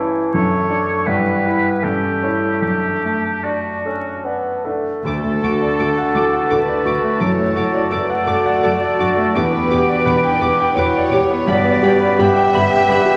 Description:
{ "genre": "classical", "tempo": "72-91 BPM", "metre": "3/4", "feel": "rubato", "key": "D major", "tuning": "A4 = 440 Hz", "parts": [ { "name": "clear concert grand piano", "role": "melody", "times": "0.0-13.2 s", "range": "D2 to D6", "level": "-21 LUFS", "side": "equal", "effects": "none" }, { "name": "mellow hollow concert flute", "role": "second line", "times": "0.0-13.2 s", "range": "D4 to A5", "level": "-29 LUFS", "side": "equal", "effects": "none" }, { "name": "warm clarinet", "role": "second line", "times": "0.0-13.2 s", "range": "C#4 to G4", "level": "-30 LUFS", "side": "equal", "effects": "none" }, { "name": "clear bassoon", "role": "accompaniment", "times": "0.0-13.2 s", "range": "E3 to D4", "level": "-26 LUFS", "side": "equal", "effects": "none" }, { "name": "clear oboe", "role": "second line", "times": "0.3-13.2 s", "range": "F#4 to D6", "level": "-26 LUFS", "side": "equal", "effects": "none" }, { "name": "warm chamber viola section", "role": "accompaniment", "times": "5.0-13.0 s", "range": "A3 to G4", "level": "-31 LUFS", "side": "equal", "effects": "none" }, { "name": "warm chamber double bass section", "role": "bass", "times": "5.0-13.0 s", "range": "E1 to D2", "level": "-33 LUFS", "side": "equal", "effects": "none" }, { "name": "warm studio cello section", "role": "bass", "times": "5.0-13.0 s", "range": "D2 to G2", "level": "-30 LUFS", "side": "equal", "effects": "none" }, { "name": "warm chamber violin section", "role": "melody", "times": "5.1-13.0 s", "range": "B5 to D6", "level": "-33 LUFS", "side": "equal", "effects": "none" }, { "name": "warm chamber violin section", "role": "second line", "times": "5.1-13.2 s", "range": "A4 to E5", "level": "-24 LUFS", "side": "equal", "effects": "none" }, { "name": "mellow French horn section", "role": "sustained chords", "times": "5.8-13.2 s", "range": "B3 to B4", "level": "-31 LUFS", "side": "equal", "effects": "none" } ], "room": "wet scoring stage reverb, RT60 1.9 s", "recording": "vinyl crackle", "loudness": "-17 LUFS", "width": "mono", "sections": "0.0-5.0 A section; 5.0-13.2 A section", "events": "none", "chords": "0.3 D/F#; 1.1 Em/G; 1.8 A7/G; 2.6 D/F#; 5.0 D; 7.2 D/F#; 9.4 Em7; 11.5 Em/G" }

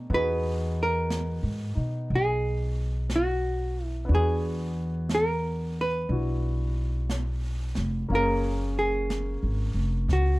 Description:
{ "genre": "jazz ballad", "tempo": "60 BPM", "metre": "4/4", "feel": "swing 67% on 8ths", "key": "unclear", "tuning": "A4 = 441 Hz", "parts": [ { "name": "warm baby grand piano", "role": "accompaniment", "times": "0.0-10.4 s", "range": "A3 to E#5", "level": "-35 LUFS", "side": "left 2 dB", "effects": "none" }, { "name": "upright bass", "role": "bass", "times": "0.0-10.4 s", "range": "E#1 to B2", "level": "-27 LUFS", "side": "equal", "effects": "none" }, { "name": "archtop guitar, miked and amplified", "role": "melody", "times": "0.1-10.4 s", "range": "F#4 to B4", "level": "-28 LUFS", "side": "right 1 dB", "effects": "none" }, { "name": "jazz brush drum kit", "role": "drums", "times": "0.1-10.4 s", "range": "brushed snare drum, hi-hat, snare drum", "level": "-39 LUFS", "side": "right 1 dB", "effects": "none" } ], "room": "light reverb", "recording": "dark, warm production", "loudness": "-25 LUFS", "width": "side -20 dB against mid", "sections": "0.0-10.4 A section", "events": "none", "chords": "0.1 Emaj7; 4.1 E9; 8.1 F#maj9" }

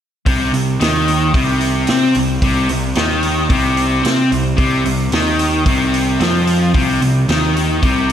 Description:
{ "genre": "blues rock power trio and southern rock", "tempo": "111 BPM", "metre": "4/4", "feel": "straight", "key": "C minor", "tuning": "A4 = 439 Hz", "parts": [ { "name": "overdriven electric guitar", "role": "riff", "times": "0.3-8.1 s", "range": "C3 to C4", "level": "-15 LUFS", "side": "equal", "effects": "spring reverb, slapback echo" }, { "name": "fuzz picked electric bass", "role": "bass", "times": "0.3-8.1 s", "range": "C2 to C3", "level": "-20 LUFS", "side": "equal", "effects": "overdrive" }, { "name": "vintage drum kit", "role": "drums", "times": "0.3-8.1 s", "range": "hi-hat, kick drum, snare drum", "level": "-20 LUFS", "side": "equal", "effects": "none" } ], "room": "moderate scoring stage reverb, RT60 2.0 s", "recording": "big arena sound", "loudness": "-13 LUFS", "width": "side -9 dB against mid", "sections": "0.3-8.1 A section", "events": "none", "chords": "0.3 Cm" }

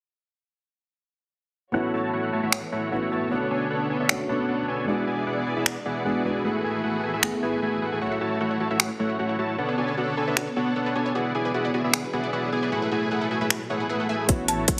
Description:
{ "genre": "future bass", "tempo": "153 BPM", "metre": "4/4", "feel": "half-time", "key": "A major", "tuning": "A4 = 440 Hz", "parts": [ { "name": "dark grand piano", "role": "accompaniment", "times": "1.7-8.0, 14.3-14.8 s", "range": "G#3 to G#4", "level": "-32 LUFS", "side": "equal", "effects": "sidechain pumping, tape echo" }, { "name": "warm studio string section", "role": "sustained chords", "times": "1.7-14.8 s", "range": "B2 to D5", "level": "-36 LUFS", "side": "equal", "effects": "sidechain pumping, low-pass filter" }, { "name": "dense compressed supersaw", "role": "riff", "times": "1.7-14.8 s", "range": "A3 to A5", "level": "-28 LUFS", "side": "equal", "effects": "sidechain pumping, low-pass filter, tape echo" }, { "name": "trap drum kit", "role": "drums", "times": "2.5-14.8 s", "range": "finger snaps, hi-hat", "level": "-25 LUFS", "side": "equal", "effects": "soft clipping on snare, high-pass filter on snare, studio reverb, high-pass filter on hats" }, { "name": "unison pluck", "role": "arpeggios", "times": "8.0-14.2 s", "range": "F#4 to E5", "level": "-36 LUFS", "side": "equal", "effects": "sidechain pumping, tape echo" }, { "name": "detuned saw bass", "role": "bass", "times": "14.3-14.8 s", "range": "A1", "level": "-35 LUFS", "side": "equal", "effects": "chorus, sidechain pumping" }, { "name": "electronic kick drum", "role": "drums", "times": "14.3-14.8 s", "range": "none", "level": "-24 LUFS", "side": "equal", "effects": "studio reverb" }, { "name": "marimba with hard mallets", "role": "melody", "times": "14.5-14.8 s", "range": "A5", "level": "-30 LUFS", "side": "equal", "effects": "sidechain pumping" } ], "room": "moderate digital room reverb, RT60 1.0 s, studio reverb", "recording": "dense, heavily limited modern master", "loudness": "-26 LUFS", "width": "mono", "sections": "1.7-14.3 A section", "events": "none", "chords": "1.7 A6; 3.3 Bm9; 4.9 E9; 6.4 F#m11; 8.0 A6; 9.6 Bm9; 11.2 E9; 12.7 F#m11; 14.3 A6" }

